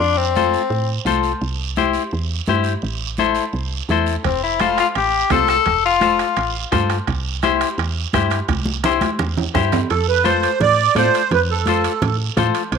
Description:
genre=latin, cumbia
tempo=170 BPM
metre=4/4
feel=straight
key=unclear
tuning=A4 = 440 Hz
part: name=edgy tenor saxophone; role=second line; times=0.0-0.9, 4.2-6.5 s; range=C4 to A4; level=-17 LUFS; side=left 7 dB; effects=none
part: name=woody FM bass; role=bass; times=0.0-12.8 s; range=F1 to A2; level=-23 LUFS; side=right 1 dB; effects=none
part: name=congas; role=percussion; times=0.0-12.8 s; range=none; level=-26 LUFS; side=right 1 dB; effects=none
part: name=guiro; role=percussion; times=0.0-12.8 s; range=none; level=-31 LUFS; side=right 17 dB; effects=none
part: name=semi-hollow electric guitar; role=accompaniment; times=0.4-12.6 s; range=E4 to D5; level=-21 LUFS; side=left 10 dB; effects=none
part: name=bombo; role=percussion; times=4.2-9.9 s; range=none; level=-26 LUFS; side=right 7 dB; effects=none
part: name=timbales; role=percussion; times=4.2-12.8 s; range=none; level=-28 LUFS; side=right 14 dB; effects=none
part: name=accordion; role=melody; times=9.9-12.8 s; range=A4 to D5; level=-17 LUFS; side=right 7 dB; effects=light tremolo tuning
room=wet spring reverb, RT60 1.3 s, small room ambience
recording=1960s-style stereo with parts hard left and right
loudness=-16 LUFS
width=side -6 dB against mid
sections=0.0-9.9 A section; 9.9-12.8 B section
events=tenor saxophone solo 0.0-9.9; drum fill 8.5-9.9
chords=0.0 F; 1.4 C; 2.8 Am; 4.2 F; 7.1 C; 9.9 F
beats=| 0.01 0.36 0.72 1.07 | 1.42 1.78 2.13 2.48 | 2.84 3.19 3.54 3.90 | 4.25 4.60 4.96 5.31 | 5.66 6.02 6.37 6.72 | 7.08 7.43 7.78 8.14 | 8.49 8.84 9.20 9.55 | 9.90 10.26 10.61 10.96 | 11.31 11.67 12.02 12.37 | 12.73

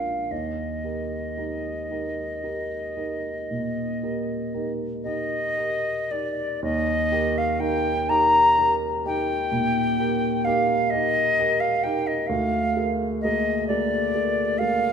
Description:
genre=classical, romantic duo for flute and grand piano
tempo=37-44 BPM (dotted quarters)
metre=12/8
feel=rubato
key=Eb major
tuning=A4 = 441 Hz
part: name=silver concert flute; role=melody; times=0.0-14.9 s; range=D5 to Bb5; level=-24 LUFS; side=left 1 dB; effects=none
part: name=dark grand piano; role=accompaniment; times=0.0-14.9 s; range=D2 to Bb4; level=-26 LUFS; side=right 2 dB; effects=none
room=moderate scoring stage reverb, RT60 1.7 s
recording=none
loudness=-22 LUFS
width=side -7 dB against mid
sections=0.0-6.6 A section; 6.6-14.9 B section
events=none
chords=0.3 Eb; 12.3 Bb7/D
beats=| 0.31 1.91 3.51 5.05 | 6.64 8.10 9.52 10.92 | 12.29 13.68

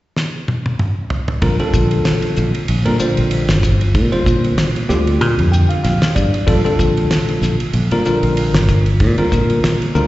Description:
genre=electric jazz fusion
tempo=95 BPM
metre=4/4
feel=swing 56% on 16ths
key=Bb major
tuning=A4 = 440 Hz
part: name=damped 70s drum kit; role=drums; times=0.2-10.1 s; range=hi-hat, kick drum, ride cymbal, snare drum, toms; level=-20 LUFS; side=equal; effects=none
part: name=bell-like tine electric piano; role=accompaniment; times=1.4-10.1 s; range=D3 to G5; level=-17 LUFS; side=left 1 dB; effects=medium stereo tremolo
part: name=fingered electric bass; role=bass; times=1.4-10.1 s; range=G1 to Bb2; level=-16 LUFS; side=equal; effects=none
room=little or no reverb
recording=live gig heard through the venue's PA, recital hall reverb, nothing above 7.9 kHz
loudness=-13 LUFS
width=side -16 dB against mid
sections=0.0-1.4 A section; 1.4-10.1 B section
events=drum fill 0.2-1.4; tine electric piano fill 5.2-6.5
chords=0.0 N.C.; 1.4 Bb69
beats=0.16 0.79 | 1.42 2.05 2.68 3.31 | 3.95 4.58 5.21 5.84 | 6.47 7.10 7.74 8.37 | 9.00 9.63

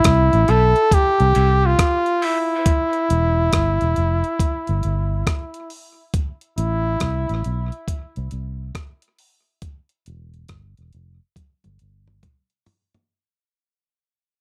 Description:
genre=dub reggae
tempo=69 BPM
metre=4/4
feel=swing 64% on 16ths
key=unclear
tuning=A4 = 439 Hz
part: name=clear flugelhorn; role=melody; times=0.0-7.4 s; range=E4 to A4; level=-22 LUFS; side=equal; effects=tape echo
part: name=breakbeat sampler-style drum kit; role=drums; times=0.0-13.1 s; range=hi-hat, kick drum, rim click, toms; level=-23 LUFS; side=equal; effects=none
part: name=vintage muted fingered electric bass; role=bass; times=0.1-12.2 s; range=E1 to C2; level=-22 LUFS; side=equal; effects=none
part: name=mellow electric guitar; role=accompaniment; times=0.5-2.4 s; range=E4 to E5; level=-36 LUFS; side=equal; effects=none
part: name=warm upright piano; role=stabs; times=0.5-2.6 s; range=E4 to E5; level=-40 LUFS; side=equal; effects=none
room=little or no reverb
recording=dry, close 1970s-style studio recording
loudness=-19 LUFS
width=mono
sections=0.0-13.1 A section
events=fade-out 0.0-13.1; filter sweep 0.0-2.7; break 2.7-13.1; drum fill 11.4-13.1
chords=0.0 Am; 2.7 Em; 6.1 Am; 9.6 Em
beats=0.05 0.92 1.79 | 2.66 3.53 4.40 5.27 | 6.14 7.01 7.88 8.75 | 9.62 10.49 11.36 12.23

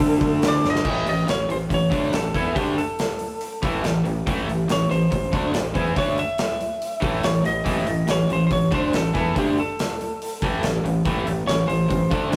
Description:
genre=blues rock power trio and southern rock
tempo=141 BPM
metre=4/4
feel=straight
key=unclear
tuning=A4 = 443 Hz
part: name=lightly driven lead guitar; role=melody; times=0.0-12.4 s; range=G4 to E5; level=-28 LUFS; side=equal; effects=none
part: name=raw garage guitar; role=riff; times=0.0-12.4 s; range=A2 to E4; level=-25 LUFS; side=equal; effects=overdrive
part: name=fuzz fingered electric bass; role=bass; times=0.0-12.4 s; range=G1 to E2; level=-32 LUFS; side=equal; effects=overdrive
part: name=big rock drum kit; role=drums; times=0.0-12.4 s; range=crash cymbal, hi-hat, kick drum, snare drum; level=-28 LUFS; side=equal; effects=none
room=moderate stone room reverb, RT60 1.1 s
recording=rough rehearsal-room recording, tube saturation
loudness=-22 LUFS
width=mono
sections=0.9-12.4 A section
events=drum fill 0.6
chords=0.0 D5; 0.9 A5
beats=0.01 0.43 | 0.86 1.28 1.71 2.14 | 2.56 2.99 3.42 3.84 | 4.27 4.69 5.12 5.54 | 5.97 6.39 6.82 7.24 | 7.66 8.09 8.51 8.94 | 9.36 9.78 10.21 10.63 | 11.05 11.48 11.90 12.32

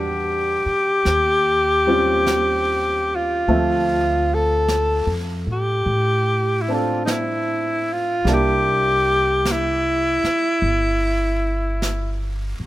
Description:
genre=jazz ballad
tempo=50 BPM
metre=4/4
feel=swing 67% on 8ths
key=unclear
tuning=A4 = 440 Hz
part: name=breathy alto saxophone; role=melody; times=0.0-12.3 s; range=Eb4 to A4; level=-19 LUFS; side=equal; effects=none
part: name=clear upright piano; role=accompaniment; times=0.0-12.7 s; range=F3 to F#5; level=-25 LUFS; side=right 1 dB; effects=none
part: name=upright bass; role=bass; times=0.0-12.6 s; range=G1 to A2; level=-25 LUFS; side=equal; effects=none
part: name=jazz brush drum kit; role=drums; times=1.1-12.7 s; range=brushed snare drum, hi-hat, snare drum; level=-32 LUFS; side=right 2 dB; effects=none
room=light reverb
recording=none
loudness=-17 LUFS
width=side -16 dB against mid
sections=0.0-12.7 A section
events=none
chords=0.0 Em9; 1.1 Eb13; 3.5 Dm9; 8.3 C9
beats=1.05 2.26 | 3.48 4.67 5.87 7.07 | 8.26 9.45 10.63 11.82

